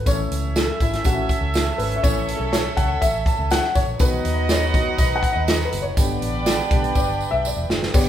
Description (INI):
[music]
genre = uptempo 1960s-style soul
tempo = 122 BPM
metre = 4/4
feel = straight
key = A lydian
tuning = A4 = 444 Hz
[part]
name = warm upright piano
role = accompaniment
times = 0.0-8.1 s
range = D3 to A5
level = -24 LUFS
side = left 4 dB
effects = none
[part]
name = vintage muted fingered electric bass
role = bass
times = 0.0-8.1 s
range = E1 to D#2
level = -26 LUFS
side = equal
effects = none
[part]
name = warm horn section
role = second line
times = 0.1-7.7 s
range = B3 to E5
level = -28 LUFS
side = right 3 dB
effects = none
[part]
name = natural country drum kit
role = drums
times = 0.1-8.1 s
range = crash cymbal, hi-hat, kick drum, snare drum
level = -21 LUFS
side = equal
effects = none
[part]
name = tambourine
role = percussion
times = 0.1-8.1 s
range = none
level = -35 LUFS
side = right 6 dB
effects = none
[part]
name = warm studio violin section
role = second line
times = 1.0-8.1 s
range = C#4 to G5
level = -28 LUFS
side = right 4 dB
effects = none
[sound]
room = moderate large studio reverb, RT60 1.3 s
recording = band playing live in one room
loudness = -18 LUFS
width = side -10 dB against mid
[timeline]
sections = 0.0-7.9 A section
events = upright piano solo 0.0-7.9; drum fill 7.0-7.9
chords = 0.1 A; 4.0 B; 6.0 G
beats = | 0.06 0.55 1.04 1.54 | 2.03 2.52 3.02 3.51 | 4.00 4.49 4.99 5.48 | 5.97 6.46 6.96 7.45 | 7.94